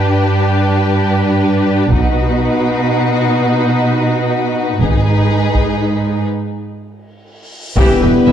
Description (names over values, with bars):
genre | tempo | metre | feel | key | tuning
cinematic, epic orchestral film score | free time | none | none | unclear | A4 = 439 Hz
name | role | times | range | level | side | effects
warm symphonic violin section | melody | 0.0-8.3 s | B4 | -24 LUFS | left 7 dB | none
rich symphonic violin section | second line | 0.0-8.3 s | E4 to E5 | -20 LUFS | left 2 dB | none
rich symphonic viola section | accompaniment | 0.0-8.3 s | E3 to G4 | -18 LUFS | right 1 dB | none
rich studio cello section | bass | 0.0-8.3 s | E2 to B2 | -16 LUFS | right 2 dB | none
clear symphonic double bass section | bass | 1.9-2.4, 4.8-5.3, 7.8-8.3 s | E1 to B1 | -19 LUFS | right 2 dB | none
taiko ensemble | drums | 1.9-8.2 s | none | -17 LUFS | left 1 dB | none
cymbal swell and impact | sound effects | 7.3-8.3 s | none | -28 LUFS | left 1 dB | none
mellow French horn section | sustained chords | 7.8-8.3 s | B3 | -13 LUFS | left 3 dB | none
warm trombone section | sustained chords | 7.8-8.3 s | E3 to G3 | -19 LUFS | right 7 dB | none
timpani | percussion | 7.8-8.3 s | E2 | -21 LUFS | left 2 dB | none
room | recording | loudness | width
moderate scoring stage reverb, RT60 1.8 s | dark, warm production | -12 LUFS | side -9 dB against mid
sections
0.0-7.8 A section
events
build-up 0.0-7.8; break 6.3-7.8; cymbal swell 7.3-7.8; impact 7.8-8.3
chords
0.0 G; 1.9 B; 4.8 G#m; 7.8 Em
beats
free time